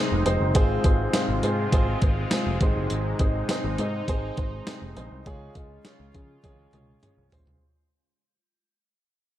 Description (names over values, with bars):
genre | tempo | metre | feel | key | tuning
1980s-style pop | 102 BPM | 4/4 | straight | unclear | A4 = 440 Hz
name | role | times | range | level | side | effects
warm concert grand piano | accompaniment | 0.0-7.6 s | Ab2 to Eb5 | -28 LUFS | equal | none
sweeping resonant pad | sustained chords | 0.0-7.6 s | C3 to F4 | -34 LUFS | left 2 dB | chorus
overdriven picked electric bass | bass | 0.1-7.6 s | F1 to Db3 | -28 LUFS | equal | none
clean 12-bit digital drum machine | drums | 0.3-7.6 s | hi-hat, kick drum, snare drum, tambourine, toms | -24 LUFS | equal | none
funky polysynth comp | stabs | 6.1-7.3 s | F3 to Ab4 | -62 LUFS | left 5 dB | chorus, tremolo
room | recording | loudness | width
light reverb | dark, warm production | -22 LUFS | side -13 dB against mid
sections
0.0-7.6 A section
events
fade-out 0.0-7.6; band accent 5.3-7.6; drum fill 6.4-7.6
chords
0.0 Ab; 0.6 Fm/Ab; 2.6 Ab; 5.3 Db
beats
| 0.55 1.14 1.73 2.32 | 2.91 3.50 4.08 4.67 | 5.26 5.85 6.44 7.02